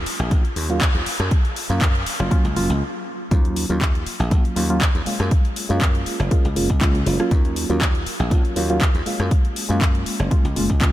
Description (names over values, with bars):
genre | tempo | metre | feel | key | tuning
filtered disco house | 120 BPM | 4/4 | swing 54% on 16ths | Eb minor | A4 = 440 Hz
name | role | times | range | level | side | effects
dry thumbed slap bass | bass | 0.0-10.9 s | Gb1 to Gb2 | -23 LUFS | equal | sidechain pumping, low-pass filter
house drum kit | drums | 0.1-10.9 s | handclaps, hi-hat, rim click | -26 LUFS | left 1 dB | overdrive
electronic kick drum | drums | 0.3-10.9 s | none | -18 LUFS | equal | overdrive
reed electric piano | accompaniment | 0.7-10.9 s | Gb3 to F4 | -24 LUFS | right 1 dB | fast tremolo, phaser, sidechain pumping, low-pass filter
room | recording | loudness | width
light reverb | none | -17 LUFS | side -14 dB against mid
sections
0.0-3.3 A section; 3.3-10.9 B section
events
build-up 0.0-3.3; stop 2.8-3.3; drop 3.3-10.9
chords
0.0 Ebm9; 1.1 Gbmaj7; 3.3 Ebm9; 5.1 Gbmaj9; 7.3 Ebm9; 9.1 Gbmaj9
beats
0.31 0.81 | 1.31 1.81 2.31 2.81 | 3.31 3.81 4.31 4.81 | 5.31 5.81 6.31 6.81 | 7.31 7.81 8.31 8.81 | 9.31 9.81 10.31 10.81